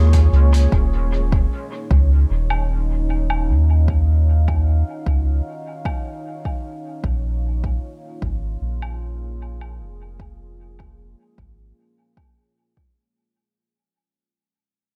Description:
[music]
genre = ambient dub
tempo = 76 BPM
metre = 4/4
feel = straight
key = Eb minor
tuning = A4 = 440 Hz
[part]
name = deep dark ambient pad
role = sustained chords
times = 0.0-13.4 s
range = Bb3 to Gb5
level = -33 LUFS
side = equal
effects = chorus, built-in reverb
[part]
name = soft dub sub bass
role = bass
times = 0.0-11.7 s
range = Eb1 to Eb2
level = -19 LUFS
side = equal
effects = none
[part]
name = electronic kick drum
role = drums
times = 0.1-12.9 s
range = none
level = -25 LUFS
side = equal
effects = overdrive
[part]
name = hi-hat and woodblock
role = drums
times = 0.1-12.3 s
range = none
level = -34 LUFS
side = equal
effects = dub echo
[sound]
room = small room ambience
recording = echo-heavy mix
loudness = -20 LUFS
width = mono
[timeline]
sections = 0.7-13.4 A section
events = fade-out 0.7-13.4; filter sweep on sub bass 0.7-13.4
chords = 0.0 Bbm7; 0.7 Ebm9; 7.0 Bbm7

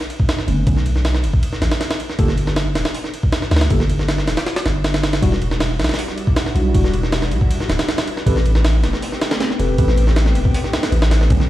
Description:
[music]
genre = drum and bass, jungle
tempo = 158 BPM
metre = 4/4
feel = straight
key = unclear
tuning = A4 = 440 Hz
[part]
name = jungle sampler-style drum kit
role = drums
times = 0.0-11.5 s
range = hi-hat, kick drum, ride cymbal, snare drum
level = -18 LUFS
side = equal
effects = none
[part]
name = mellow tine electric piano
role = stabs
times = 0.5-11.4 s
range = D3 to B4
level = -25 LUFS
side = equal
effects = medium stereo tremolo, vintage 12-bit sampler grit, dub echo
[part]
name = long sustained 808-style bass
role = bass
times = 0.5-11.5 s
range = D1 to D2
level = -17 LUFS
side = equal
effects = none
[part]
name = soft string machine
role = sustained chords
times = 5.7-11.5 s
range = G3 to A4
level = -26 LUFS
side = left 1 dB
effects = phaser, ensemble chorus
[sound]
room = light reverb, digital ambience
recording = played on a big sound system in a bare room, large studio reverb, vinyl crackle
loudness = -15 LUFS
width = side -14 dB against mid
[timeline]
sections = 0.0-11.5 A section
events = none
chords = 0.0 Bm9; 2.2 N.C.; 5.2 Em9; 8.3 Am9

